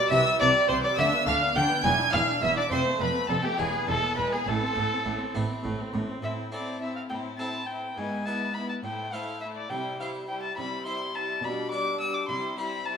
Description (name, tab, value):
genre	classical, baroque-style concerto movement with solo episodes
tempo	69 BPM (dotted quarters)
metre	6/8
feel	straight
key	A minor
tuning	A4 = 436 Hz
part	dark violin	melody	0.0-13.0 s	G4 to E6	-29 LUFS	left 2 dB	none
part	rich chamber violin section	melody	0.0-13.0 s	A4 to G#6	-34 LUFS	left 3 dB	none
part	warm chamber violin section	second line	0.0-13.0 s	D4 to G#5	-31 LUFS	right 2 dB	none
part	dark chamber viola section	accompaniment	0.0-13.0 s	E3 to E4	-35 LUFS	left 1 dB	none
part	harpsichord	accompaniment	0.0-13.0 s	E2 to D5	-36 LUFS	right 1 dB	none
part	rich chamber double bass section	bass	0.1-6.0 s	E1 to D2	-34 LUFS	right 4 dB	none
part	warm chamber cello section	bass	0.1-13.0 s	E2 to D3	-33 LUFS	right 3 dB	none
room	wet recital hall reverb, RT60 1.4 s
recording	none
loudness	-25 LUFS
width	side -7 dB against mid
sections	0.0-6.2 A section; 6.2-13.0 B section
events	none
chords	0.1 C; 1.0 Bdim/D; 1.8 E5; 2.7 F; 3.6 E; 4.5 Am; 8.0 E/G#; 8.8 Am; 9.7 C; 11.4 G/B; 12.3 C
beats	0.11 | 0.97 1.84 | 2.71 3.59 | 4.47 5.35 | 6.23 7.10 | 7.97 8.84 | 9.70 10.57 | 11.43 12.29